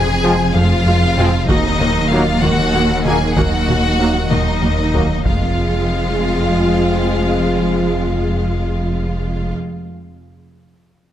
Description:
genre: cinematic, hybrid orchestral and electronic film score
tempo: 64 BPM (dotted quarters)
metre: 6/8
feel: straight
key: F phrygian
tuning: A4 = 440 Hz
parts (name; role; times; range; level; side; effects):
- warm studio violin section; melody; 0.0-9.5 s; Eb5 to Ab5; -24 LUFS; left 4 dB; none
- warm symphonic violin section; second line; 0.0-9.6 s; Eb4 to Ab4; -24 LUFS; left 2 dB; none
- airy breathy pad; sustained chords; 0.0-9.5 s; Gb3 to F5; -26 LUFS; right 1 dB; chorus
- thumb-piano-like synth pluck; arpeggios; 0.0-4.5 s; Eb3 to F4; -27 LUFS; left 2 dB; none
- fat analog bass; riff; 0.0-5.1 s; Eb2 to F3; -21 LUFS; right 1 dB; none
- clear symphonic double bass section; bass; 0.0-9.5 s; F1 to Eb2; -23 LUFS; right 2 dB; none
- dark studio cello section; bass; 0.0-9.5 s; Eb2 to F2; -21 LUFS; equal; none
- warm sub bass; bass; 0.0-9.5 s; Eb1 to F1; -25 LUFS; equal; none
- warm symphonic viola section; accompaniment; 0.2-9.5 s; Gb3 to Gb4; -24 LUFS; right 1 dB; none
- mellow French horn section; sustained chords; 0.2-9.5 s; Bb3 to F4; -27 LUFS; left 5 dB; none
- warm trombone section; sustained chords; 0.2-9.5 s; F3 to Bb3; -24 LUFS; right 2 dB; none
- taiko ensemble; drums; 1.2-6.5 s; none; -23 LUFS; equal; none
room: moderate scoring stage reverb, RT60 1.6 s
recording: none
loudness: -14 LUFS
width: side -11 dB against mid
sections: 0.0-5.2 A section; 5.2-9.0 B section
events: drum fill 4.3-5.2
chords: 0.0 Fm; 1.5 Ebm; 5.2 Fm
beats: 0.55 | 1.49 2.43 | 3.37 4.30 | 5.24 6.18 | 7.12 8.05

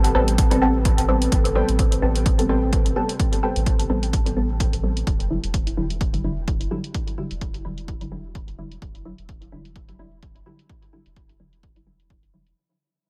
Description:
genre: dub techno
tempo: 128 BPM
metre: 4/4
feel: swing 55% on 16ths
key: unclear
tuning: A4 = 440 Hz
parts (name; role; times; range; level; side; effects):
- deep dark ambient pad; sustained chords; 0.0-12.5 s; C4 to D5; -33 LUFS; equal; chorus, built-in reverb, sidechain pumping
- soft dub sub bass; bass; 0.0-12.5 s; E1 to A1; -28 LUFS; equal; sidechain pumping
- electronic hi-hat; drums; 0.0-12.5 s; none; -34 LUFS; equal; low-pass filter on hats, low-pass filter on snare, low-pass filter on room
- filtered dub chord stab; stabs; 0.1-12.6 s; D3 to A4; -28 LUFS; equal; chorus, phaser, sidechain pumping, dub echo
- electronic kick drum; drums; 0.4-12.2 s; none; -25 LUFS; equal; none
- warbly dusty pluck; riff; 1.6-3.6 s; A4 to G5; -36 LUFS; equal; chorus, sidechain pumping, dub echo
room: light reverb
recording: none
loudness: -21 LUFS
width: mono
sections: 0.0-12.6 A section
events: fade-out 0.0-12.6; filter sweep on synth stab 0.0-12.6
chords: 0.0 Am9; 5.1 Em9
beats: 0.38 0.85 | 1.32 1.79 2.26 2.73 | 3.19 3.66 4.13 4.60 | 5.07 5.54 6.01 6.48 | 6.95 7.41 7.88 8.35 | 8.82 9.29 9.76 10.23 | 10.70 11.16 11.63 12.10

